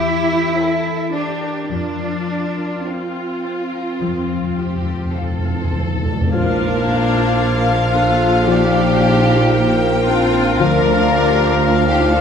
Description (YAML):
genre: classical, slow romantic movement for symphony orchestra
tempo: 50-59 BPM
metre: 4/4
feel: rubato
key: Bb major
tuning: A4 = 442 Hz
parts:
  - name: rich studio viola section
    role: accompaniment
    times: 0.0-12.2 s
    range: Bb3 to Bb4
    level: -24 LUFS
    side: right 3 dB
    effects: none
  - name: concert harp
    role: arpeggios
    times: 0.0-12.2 s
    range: Bb2 to G5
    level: -25 LUFS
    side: left 8 dB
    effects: none
  - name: rich studio double bass section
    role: bass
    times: 0.0-12.2 s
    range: Bb1 to F2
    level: -22 LUFS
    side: right 3 dB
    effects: none
  - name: warm studio cello section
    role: bass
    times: 0.0-12.2 s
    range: D2 to E4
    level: -22 LUFS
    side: right 2 dB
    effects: none
  - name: warm studio violin section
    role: melody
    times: 0.6-12.2 s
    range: F5 to G5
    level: -25 LUFS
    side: left 5 dB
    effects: none
  - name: rich studio violin section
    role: second line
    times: 0.6-12.2 s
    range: D4 to C5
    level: -22 LUFS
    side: left 4 dB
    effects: none
  - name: timpani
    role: percussion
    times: 4.0-6.3 s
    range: F2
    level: -21 LUFS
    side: equal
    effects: none
  - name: mellow hollow silver concert flute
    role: second line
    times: 6.3-12.2 s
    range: F5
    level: -27 LUFS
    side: left 4 dB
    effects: none
  - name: warm clarinet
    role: second line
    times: 6.3-12.2 s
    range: Bb3 to F4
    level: -24 LUFS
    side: equal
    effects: none
  - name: warm oboe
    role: second line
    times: 6.3-12.2 s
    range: F5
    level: -24 LUFS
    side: equal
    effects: none
  - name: dark bassoon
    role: accompaniment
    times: 6.3-12.2 s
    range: F3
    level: -21 LUFS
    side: left 2 dB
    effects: none
  - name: dark French horn section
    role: sustained chords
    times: 6.3-11.0 s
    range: F3 to F4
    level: -24 LUFS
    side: left 3 dB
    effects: none
room: moderate scoring stage reverb, RT60 1.9 s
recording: minimal, uncompressed stereo recording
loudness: -14 LUFS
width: side -7 dB against mid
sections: 0.0-6.3 A section; 6.3-12.2 B section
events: timpani fill 4.0-6.3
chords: 0.0 C7/E; 1.7 Fsus4; 4.0 F; 6.3 Bb; 10.6 Bb/D